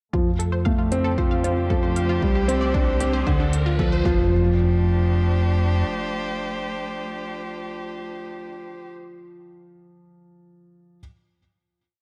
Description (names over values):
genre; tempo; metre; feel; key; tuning
piano and strings electronica; 115 BPM; 4/4; straight; F major; A4 = 439 Hz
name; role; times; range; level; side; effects
warm string quartet; sustained chords; 0.1-8.9 s; A3 to C5; -33 LUFS; equal; sidechain pumping, low-pass filter
analog pluck; arpeggios; 0.1-4.5 s; D4 to F5; -34 LUFS; equal; chorus, cassette tape, sidechain pumping, tape echo
dark concert grand piano; riff; 0.1-11.0 s; D3 to F4; -27 LUFS; equal; tape echo
warm sub bass; bass; 0.1-5.8 s; C2 to F2; -26 LUFS; equal; sidechain pumping
electronic kick drum; drums; 0.1-4.2 s; none; -26 LUFS; equal; none
riser and impact; sound effects; 2.3-8.5 s; none; -36 LUFS; equal; none
electronic hi-hat; drums; 0.4-3.6 s; none; -37 LUFS; equal; high-pass filter on hats, high-pass filter on room
room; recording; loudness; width
light reverb, digital ambience; dark, warm production; -22 LUFS; mono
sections
0.1-4.3 build; 4.3-8.5 final chord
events
build-up 0.1-4.3; filter sweep on string quartet 0.1-4.3; riser 2.3-4.3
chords
0.1 F; 2.2 Csus2; 3.3 Dm7; 4.1 F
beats
| 0.14 0.66 1.18 1.70 | 2.23 2.75 3.27 3.79 | 4.31 4.83 5.36 5.88 | 6.40 6.92 7.44 7.96